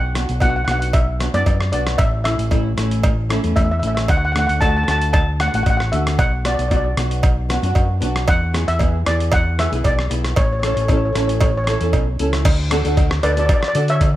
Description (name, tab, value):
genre	calypso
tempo	115 BPM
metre	4/4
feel	straight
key	D major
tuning	A4 = 440 Hz
part	steel pan	melody	0.0-14.2 s	B4 to A5	-22 LUFS	equal	none
part	overdriven fingered electric bass	bass	0.0-14.2 s	A1 to D3	-20 LUFS	equal	none
part	flamenco guitar	accompaniment	0.1-14.1 s	A3 to A4	-24 LUFS	equal	double-tracked left and right
part	boom bap sampler-style drum kit	drums	0.2-14.1 s	crash cymbal, hi-hat, kick drum, rim click	-20 LUFS	equal	none
part	cowbell	percussion	0.4-14.1 s	none	-25 LUFS	right 4 dB	none
room	studio reverb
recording	none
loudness	-15 LUFS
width	side -14 dB against mid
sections	0.0-12.5 A section; 12.5-14.2 B section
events	none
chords	0.0 Bm; 2.0 A; 4.1 D; 6.2 Bm; 8.3 E7; 10.4 A; 12.5 D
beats	0.41 0.94 1.46 | 1.99 2.51 3.04 3.56 | 4.09 4.62 5.14 5.66 | 6.19 6.71 7.24 7.76 | 8.28 8.81 9.33 9.85 | 10.37 10.89 11.41 11.94 | 12.46 12.97 13.49 14.01